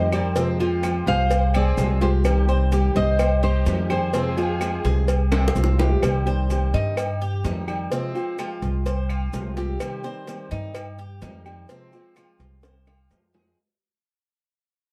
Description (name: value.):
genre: latin, Cuban son and guajira.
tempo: 127 BPM.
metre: 4/4.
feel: straight.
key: unclear.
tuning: A4 = 443 Hz.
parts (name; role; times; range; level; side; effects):
nylon-string guitar; melody; 0.0-5.5 s; C5 to F5; -27 LUFS; equal; none.
dark studio violin section; second line; 0.0-5.5 s; G4 to C5; -36 LUFS; equal; none.
fingerpicked steel-string acoustic guitar; accompaniment; 0.0-13.6 s; C3 to G4; -30 LUFS; equal; none.
Cuban tres; arpeggios; 0.0-13.6 s; C4 to C5; -34 LUFS; equal; none.
upright bass; bass; 0.0-13.5 s; C2 to G2; -24 LUFS; equal; none.
agogo bells and timbales; percussion; 0.1-13.5 s; none; -35 LUFS; equal; none.
claves; percussion; 0.1-13.1 s; none; -40 LUFS; equal; none.
maracas; percussion; 0.1-13.6 s; none; -49 LUFS; equal; none.
cowbell and bongos; percussion; 0.4-13.6 s; none; -32 LUFS; equal; none.
room: light reverb.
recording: dark, warm production.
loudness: -22 LUFS.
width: mono.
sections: 0.0-6.0 A section; 6.0-13.6 B section.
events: drum fill 5.3-6.0, 12.6-13.6; fade-out 6.0-13.6.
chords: 0.4 Fm; 2.2 Cm; 4.1 Fm; 6.0 Cm; 7.9 Fm; 9.8 Cm; 11.7 Fm.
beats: | 0.36 0.83 1.30 1.77 | 2.25 2.72 3.19 3.67 | 4.14 4.61 5.08 5.55 | 6.03 6.50 6.97 7.45 | 7.92 8.39 8.86 9.33 | 9.81 10.28 10.75 11.22 | 11.69 12.17 12.64 13.11.